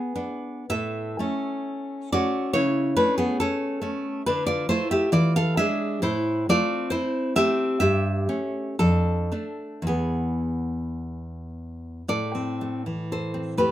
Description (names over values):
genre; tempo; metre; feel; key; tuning
romantic piece for solo classical guitar; 52-71 BPM; 2/4; rubato; A major, A minor from 4.2 s; A4 = 438 Hz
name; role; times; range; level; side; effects
nylon-string guitar; solo; 0.0-13.7 s; E2 to F5; -23 LUFS; equal; none
room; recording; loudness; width
moderate studio ambience, RT60 0.5 s; minimal, uncompressed stereo recording; -22 LUFS; side -13 dB against mid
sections
0.0-12.1 A section; 12.1-13.7 B section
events
none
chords
0.0 E7 (rootless); 0.7 A; 2.5 A/C#; 4.2 Dm13; 5.1 E7b9; 6.0 Am; 7.8 A7/G; 8.8 Dm/F; 9.9 E; 12.1 Am